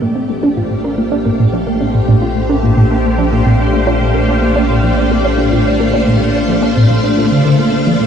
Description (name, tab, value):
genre	ambient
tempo	109 BPM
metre	4/4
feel	straight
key	Bb major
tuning	A4 = 435 Hz
part	string machine, full ensemble	sustained chords	0.0-8.1 s	A3 to F5	-15 LUFS	left 1 dB	ensemble chorus, shimmer reverb
part	thumb-piano-like synth pluck	arpeggios	0.0-7.9 s	F3 to Bb4	-19 LUFS	right 2 dB	chorus, auto-pan, tape echo, shimmer reverb
part	resonant blip pluck	riff	0.0-8.1 s	Bb2 to D4	-14 LUFS	equal	phaser, lush chorus, tape echo
part	analog drone	bass	0.7-8.1 s	Bb1	-20 LUFS	equal	chorus
room	wet huge ambient reverb, RT60 8.1 s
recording	in a vast, echoing space, nothing above 10.4 kHz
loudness	-10 LUFS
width	side -8 dB against mid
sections	0.0-8.1 A section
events	filter sweep on synth arpeggio sound 0.0-8.1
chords	0.0 Bb